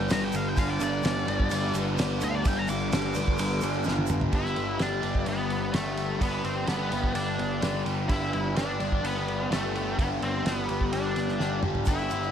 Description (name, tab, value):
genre	psychedelic rock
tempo	128 BPM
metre	4/4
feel	straight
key	G major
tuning	A4 = 436 Hz
part	octave-fuzz lead guitar	melody	0.0-12.3 s	A3 to D6	-32 LUFS	left 1 dB	wah, distortion, analog delay
part	bright tonewheel organ	sustained chords	0.0-12.3 s	G3 to B5	-43 LUFS	right 6 dB	none
part	overdriven electric guitar	riff	0.0-12.3 s	G2 to G4	-29 LUFS	left 1 dB	phaser
part	fuzz picked electric bass	bass	0.0-12.3 s	G1 to D2	-32 LUFS	equal	overdrive
part	cloth-damped thuddy drum kit	drums	0.1-12.2 s	kick drum, ride cymbal, snare drum, toms	-31 LUFS	right 1 dB	none
part	tube shaker	percussion	0.1-4.2, 11.9-12.3 s	none	-45 LUFS	right 9 dB	none
room	small room ambience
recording	none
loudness	-25 LUFS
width	side -9 dB against mid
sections	0.0-4.3 A section; 4.3-12.3 B section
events	lead electric guitar solo 0.0-4.3; drum fill 3.9-4.3, 11.4-11.9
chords	0.0 G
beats	0.10 | 0.57 1.04 1.51 1.98 | 2.45 2.92 3.39 3.86 | 4.33 4.80 5.27 5.74 | 6.21 6.68 7.15 7.62 | 8.09 8.56 9.04 9.51 | 9.98 10.45 10.92 11.40 | 11.87